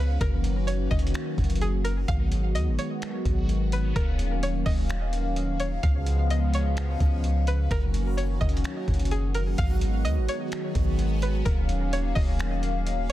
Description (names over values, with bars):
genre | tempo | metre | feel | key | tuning
hip hop, atmospheric cloud-rap | 128 BPM | 4/4 | half-time | G# dorian | A4 = 442 Hz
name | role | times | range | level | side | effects
string-like resonator pluck | melody | 0.0-13.1 s | G#4 to E#5 | -35 LUFS | equal | chorus, tape echo
hollow soft pad | sustained chords | 0.0-13.1 s | C#3 to E#5 | -30 LUFS | left 1 dB | chorus
soft 808-style bass | bass | 0.0-13.1 s | D#1 to D#2 | -26 LUFS | equal | none
backwards swelling texture | texture | 0.0-13.1 s | C#4 to E#5 | -42 LUFS | left 1 dB | built-in reverb
trip hop sampler-style drum kit | drums | 0.2-13.1 s | finger snaps, hi-hat, kick drum | -28 LUFS | equal | soft clipping on snare
room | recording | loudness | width
little or no reverb | dense, heavily limited modern master | -23 LUFS | side -14 dB against mid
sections
0.0-9.6 A section; 9.6-13.1 B section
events
none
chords
0.2 F#6; 2.1 G#m7; 4.0 D#m9; 5.8 C#7; 7.7 F#6; 9.6 G#m7; 11.5 D#m9